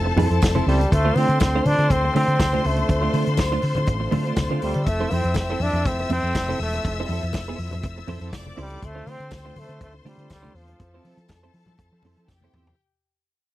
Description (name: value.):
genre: disco.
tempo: 121 BPM.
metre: 4/4.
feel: straight.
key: F major.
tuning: A4 = 438 Hz.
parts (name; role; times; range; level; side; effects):
rich studio string section; second line; 0.0-12.8 s; G4 to E6; -30 LUFS; left 4 dB; none.
bright tonewheel organ; sustained chords; 0.0-12.8 s; D3 to A4; -33 LUFS; equal; overdrive, chorus vibrato, slow rotary speaker.
hollow-body short-scale fingered electric bass; bass; 0.0-12.7 s; E1 to F3; -24 LUFS; equal; none.
clean electric guitar; accompaniment; 0.1-12.7 s; A3 to C5; -27 LUFS; right 4 dB; wide subtle chorus.
warm soul drum kit; drums; 0.2-12.8 s; hi-hat, kick drum, snare drum, toms; -23 LUFS; equal; none.
congas; percussion; 0.2-12.5 s; none; -31 LUFS; left 4 dB; none.
tambourine; percussion; 0.4-12.4 s; none; -40 LUFS; right 12 dB; none.
bright trombone; melody; 0.7-11.3 s; F3 to D4; -25 LUFS; equal; none.
room: little or no reverb.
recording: dry, close 1970s-style studio recording.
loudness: -19 LUFS.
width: side -15 dB against mid.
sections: 0.0-12.8 A section.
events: fade-out 0.0-12.8; drum fill 12.3-12.8.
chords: 0.0 Fmaj7; 0.9 Dm7; 4.9 Fmaj7; 8.8 Dm7; 10.8 Fmaj7.